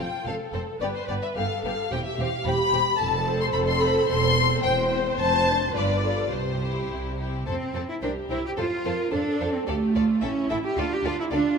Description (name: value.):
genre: quick classical-period movement for string orchestra.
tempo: 109 BPM.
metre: 2/4.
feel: rubato.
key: C major, F major from 7.5 s.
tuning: A4 = 440 Hz.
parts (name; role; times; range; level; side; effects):
warm symphonic violin section; melody; 0.0-11.4 s; C5 to C6; -27 LUFS; left 5 dB; none.
rich studio violin section; second line; 0.0-11.4 s; B3 to E5; -32 LUFS; left 4 dB; none.
warm symphonic viola section; accompaniment; 0.0-11.6 s; D4 to C5; -29 LUFS; right 1 dB; none.
rich studio double bass section; bass; 0.0-11.4 s; E1 to F2; -30 LUFS; right 4 dB; none.
rich symphonic cello section; bass; 0.0-11.6 s; E2 to G4; -28 LUFS; right 3 dB; none.
room: moderate concert hall reverb, RT60 2.2 s.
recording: none.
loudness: -22 LUFS.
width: side -5 dB against mid.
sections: 0.0-7.5 A section; 7.5-11.6 B section.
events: none.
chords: 0.0 F; 0.8 G; 1.9 C/E; 3.0 F; 4.1 C/E; 5.2 Dm7/F; 5.7 G7; 6.3 C; 7.5 F; 8.0 C; 8.6 F; 9.7 Dm; 10.2 A7; 10.8 Dm.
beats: 0.26 | 0.81 1.37 | 1.92 2.46 | 3.00 3.55 | 4.10 4.64 | 5.19 5.75 | 6.32 6.89 | 7.47 8.03 | 8.58 9.13 | 9.68 10.23 | 10.77 11.31.